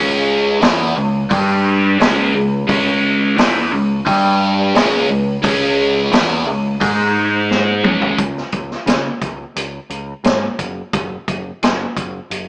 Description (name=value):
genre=classic rock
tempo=87 BPM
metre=4/4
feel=straight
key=unclear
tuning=A4 = 440 Hz
part: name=biting overdriven guitar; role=riff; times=0.0-8.2 s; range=Db3 to Ab4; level=-14 LUFS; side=equal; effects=phaser
part: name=growling picked electric bass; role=bass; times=0.0-12.5 s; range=Gb1 to Db3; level=-23 LUFS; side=equal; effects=overdrive
part: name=vintage drum kit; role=drums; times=0.6-12.5 s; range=hi-hat, kick drum, snare drum, toms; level=-18 LUFS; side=equal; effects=none
room=moderate studio reverb, RT60 0.7 s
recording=band playing live in one room, small speaker sound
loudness=-13 LUFS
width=side -27 dB against mid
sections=0.0-8.2 A section; 8.2-12.5 B section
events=drum fill 7.5-8.2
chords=0.0 Db5; 1.3 G5; 2.0 Db5; 4.1 G5; 4.8 Db5; 6.8 Ab5; 7.8 Db5; 10.6 N.C.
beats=0.62 1.31 2.00 | 2.69 3.38 4.06 4.75 | 5.44 6.12 6.81 7.50 | 8.18 8.87 9.56 10.24 | 10.93 11.62 12.30